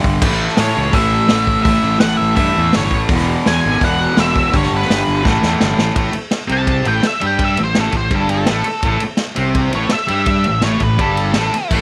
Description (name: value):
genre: garage rock duo or trio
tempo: 167 BPM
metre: 4/4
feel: straight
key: unclear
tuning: A4 = 441 Hz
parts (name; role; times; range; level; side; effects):
- fuzz guitar; riff; 0.0-11.8 s; E2 to G4; -20 LUFS; equal; distortion
- fuzz fingered electric bass; bass; 0.0-11.8 s; E1 to A2; -23 LUFS; equal; overdrive
- vintage drum kit; drums; 0.0-11.8 s; crash cymbal, hi-hat, kick drum, ride cymbal, snare drum; -21 LUFS; equal; none
- octave-fuzz lead guitar; melody; 0.6-11.7 s; A4 to A5; -21 LUFS; equal; distortion
room: small room ambience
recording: none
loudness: -16 LUFS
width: mono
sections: 0.0-6.0 A section; 6.0-11.8 B section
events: drum fill 5.2-6.0; lead electric guitar solo 6.0-11.8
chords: 0.2 A; 3.1 E; 4.5 G; 5.2 A5; 6.0 Gsus24